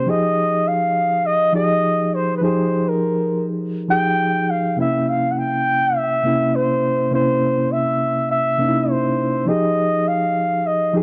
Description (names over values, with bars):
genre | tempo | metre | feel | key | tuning
soul | 102 BPM | 4/4 | swing 54% on 16ths | F minor | A4 = 440 Hz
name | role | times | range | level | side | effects
breathy flugelhorn | melody | 0.0-11.0 s | Bb4 to G5 | -21 LUFS | equal | none
mellow reed electric piano | accompaniment | 0.0-11.0 s | C3 to Ab4 | -23 LUFS | equal | fast tremolo
room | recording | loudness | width
light reverb, studio ambience | none | -19 LUFS | mono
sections
0.0-11.0 A section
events
none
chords
0.1 Fm9; 4.8 C7b9; 9.5 Fm9